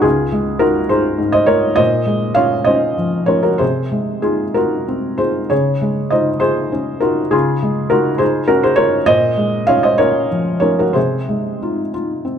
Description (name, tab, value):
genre	neoclassical minimalist piano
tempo	60-70 BPM (dotted quarters)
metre	6/8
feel	rubato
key	Db major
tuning	A4 = 440 Hz
part	felt-muted upright piano	solo	0.0-12.4 s	Db2 to F5	-14 LUFS	equal	none
room	moderate recital hall reverb, RT60 1.5 s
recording	none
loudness	-14 LUFS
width	side -8 dB against mid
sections	0.0-12.4 A section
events	none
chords	0.0 Dbadd9; 1.8 Bbm7; 3.6 Ab6/C; 5.5 Dbadd9; 9.1 Bbm7; 11.0 Ab6/C